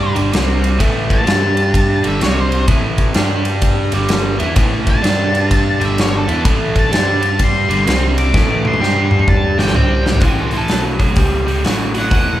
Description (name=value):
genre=blues rock power trio and southern rock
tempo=127 BPM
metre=4/4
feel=swing 64% on 8ths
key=unclear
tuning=A4 = 440 Hz
part: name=octave-fuzz lead guitar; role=melody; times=0.0-12.4 s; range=E4 to D6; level=-20 LUFS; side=left 1 dB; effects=distortion
part: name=overdriven electric guitar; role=riff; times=0.0-12.4 s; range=G2 to G4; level=-18 LUFS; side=right 1 dB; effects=none
part: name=overdriven picked electric bass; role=bass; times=0.0-12.4 s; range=E1 to G2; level=-19 LUFS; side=equal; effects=none
part: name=big rock drum kit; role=drums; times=0.2-12.3 s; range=hi-hat, kick drum, ride cymbal, snare drum, toms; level=-16 LUFS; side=equal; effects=none
room=moderate large studio reverb, RT60 0.8 s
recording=band playing live in one room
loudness=-12 LUFS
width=side -13 dB against mid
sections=0.0-10.2 A section; 10.2-12.4 B section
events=lead electric guitar solo 0.0-10.2; drum fill 8.3-10.2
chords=0.3 C5; 0.8 A5; 1.3 G5; 2.2 C5; 2.7 A5; 3.2 G5; 4.3 A5; 5.0 G5; 6.2 A5; 6.9 G5; 7.9 C5; 8.3 A5; 8.8 G5; 9.8 C5; 10.2 A